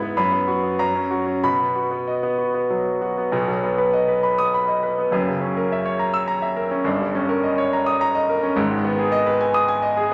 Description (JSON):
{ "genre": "classical, virtuoso piano study", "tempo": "90-108 BPM", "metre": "3/4", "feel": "rubato", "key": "B major", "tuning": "A4 = 440 Hz", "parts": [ { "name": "bright concert grand piano", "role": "solo", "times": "0.0-10.1 s", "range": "F#1 to E6", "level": "-21 LUFS", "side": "equal", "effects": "none" } ], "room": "wet recital hall reverb, RT60 1.4 s", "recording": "none", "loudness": "-21 LUFS", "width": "mono", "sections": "0.0-3.3 A section; 3.3-10.1 A section", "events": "none", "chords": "0.2 B5/F#; 0.8 F#; 1.4 B; 5.1 F#7; 6.9 D#7/G; 8.6 G#m", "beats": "0.16 0.77 | 1.43 2.08 2.70 | 3.33 3.94 4.53 | 5.12 5.71 6.28 | 6.85 7.42 8.00 | 8.58 9.14 9.70" }